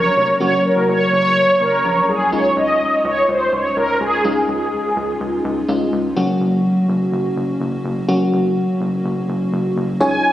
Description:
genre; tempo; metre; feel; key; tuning
synth-pop; 125 BPM; 4/4; straight; unclear; A4 = 441 Hz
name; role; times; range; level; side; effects
mellow synth brass; melody; 0.0-5.4, 10.0-10.3 s; Ab4 to Ab5; -16 LUFS; equal; chorus, digital delay
FM electric piano with soft pad layer; accompaniment; 0.0-10.3 s; Gb3 to Db5; -19 LUFS; left 1 dB; chorus
rubbery square bass; bass; 0.0-10.2 s; F1 to Db2; -26 LUFS; equal; none
room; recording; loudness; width
wet lush hall reverb, RT60 2.5 s; recorded on a phone in the room, studio reverb, compression; -15 LUFS; side -13 dB against mid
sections
0.0-2.3 A section; 2.3-10.0 B section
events
none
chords
0.0 Gb; 2.3 Dbadd9; 6.2 Gb

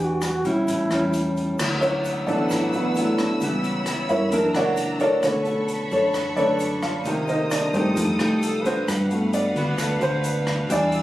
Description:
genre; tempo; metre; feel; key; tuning
bossa nova; 132 BPM; 4/4; straight; D major; A4 = 440 Hz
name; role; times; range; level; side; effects
reedy alto flute; melody; 0.0-1.3 s; E4 to F#4; -24 LUFS; right 1 dB; none
nylon-string guitar; accompaniment; 0.0-11.0 s; A2 to C#5; -25 LUFS; left 1 dB; none
hollow-body short-scale fingered electric bass; bass; 0.0-11.0 s; A1 to G2; -29 LUFS; equal; none
open jazz drum kit; drums; 0.2-11.0 s; crash cymbal, hi-hat, kick drum, rim click; -32 LUFS; left 1 dB; none
egg shaker; percussion; 0.2-11.0 s; none; -45 LUFS; left 2 dB; none
rich symphonic string section; sustained chords; 1.6-11.0 s; D4 to E6; -32 LUFS; left 1 dB; none
warm baby grand piano; accompaniment; 1.8-11.0 s; D3 to F#5; -23 LUFS; right 1 dB; none
room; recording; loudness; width
light reverb; recorded on a phone in the room, studio reverb; -20 LUFS; side -15 dB against mid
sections
0.0-1.6 A section; 1.6-11.0 B section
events
grand piano solo 1.6-11.0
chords
0.0 Em7; 0.7 A7; 1.6 D69; 3.4 C#m7b5; 4.3 F#7b13; 5.2 Bm9; 7.1 Cm7; 8.0 F9; 8.9 Gmaj7

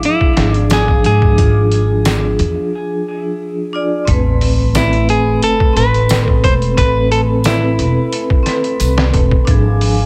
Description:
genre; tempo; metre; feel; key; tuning
trip hop; 89 BPM; 4/4; straight; A harmonic minor; A4 = 442 Hz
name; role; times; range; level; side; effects
semi-hollow electric guitar; melody; 0.0-8.8 s; E4 to C5; -21 LUFS; equal; tape echo
vibraphone with medium hard mallets; accompaniment; 0.0-10.1 s; F3 to D5; -21 LUFS; equal; harmonic tremolo, vintage 12-bit sampler grit, tape echo
dark analog pad; sustained chords; 0.0-10.1 s; A3 to D6; -28 LUFS; equal; chorus
trip hop sampler-style drum kit; drums; 0.0-10.0 s; hi-hat, kick drum, snare drum; -18 LUFS; equal; vintage 12-bit sampler grit
upright bass; bass; 0.4-10.1 s; E1 to G#2; -17 LUFS; equal; tube saturation
tambourine; percussion; 0.7-8.9 s; none; -30 LUFS; equal; none
sub drop; sound effects; 4.1-6.8 s; none; -24 LUFS; equal; none
room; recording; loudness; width
studio reverb; none; -14 LUFS; mono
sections
0.0-4.1 A section; 4.1-10.1 B section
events
break 2.7-4.1; impact 4.1-6.8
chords
0.0 E7b9/G# (rootless); 4.1 Amadd9; 9.5 E7b9/G# (rootless)

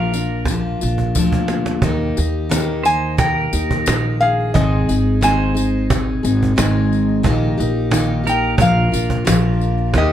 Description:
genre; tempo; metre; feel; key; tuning
acoustic folk duo or small band; 89 BPM; 4/4; straight; Eb major; A4 = 440 Hz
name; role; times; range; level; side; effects
metal-body resonator slide guitar; melody; 0.0-10.1 s; Eb5 to Ab5; -20 LUFS; left 1 dB; none
pedal steel guitar; second line; 0.0-10.1 s; G4 to C5; -24 LUFS; right 3 dB; none
picked steel-string acoustic guitar; accompaniment; 0.0-10.1 s; Ab2 to Ab4; -19 LUFS; left 1 dB; none
upright bass; bass; 0.0-10.1 s; Ab1 to Eb2; -20 LUFS; right 1 dB; none
cajon; percussion; 0.1-10.1 s; none; -21 LUFS; right 2 dB; none
tambourine; percussion; 0.1-9.7 s; none; -30 LUFS; left 7 dB; none
room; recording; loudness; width
light reverb; dark, warm production; -15 LUFS; side -10 dB against mid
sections
0.0-10.1 A section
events
drum fill 1.0-1.8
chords
0.0 Bb; 1.8 Eb; 4.5 Ab; 7.2 Eb/Bb; 8.6 Bb

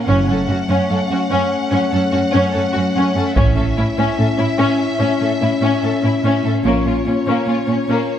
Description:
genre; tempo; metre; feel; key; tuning
cinematic, epic orchestral film score; 73 BPM; 4/4; straight; unclear; A4 = 440 Hz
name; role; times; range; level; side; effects
rich studio violin section; melody; 0.0-8.2 s; Db5 to Gb5; -25 LUFS; left 3 dB; none
mellow French horn section; sustained chords; 0.0-8.2 s; A3 to F4; -21 LUFS; left 4 dB; none
rich studio violin section; second line; 0.1-8.1 s; Bb3 to A4; -23 LUFS; left 2 dB; none
rich symphonic viola section; accompaniment; 0.1-8.1 s; Db4; -22 LUFS; equal; none
rich symphonic cello section; bass; 0.1-8.0 s; Gb2 to Bb2; -20 LUFS; right 2 dB; none
rich symphonic double bass section; bass; 0.1-6.8 s; Gb1 to Bb1; -21 LUFS; right 2 dB; none
taiko ensemble; drums; 3.4-5.0 s; none; -20 LUFS; equal; none
room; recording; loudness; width
moderate concert hall reverb, RT60 2.1 s; none; -14 LUFS; side -10 dB against mid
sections
0.0-8.2 A section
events
none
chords
0.1 Gbm; 3.4 A; 6.6 Bbm

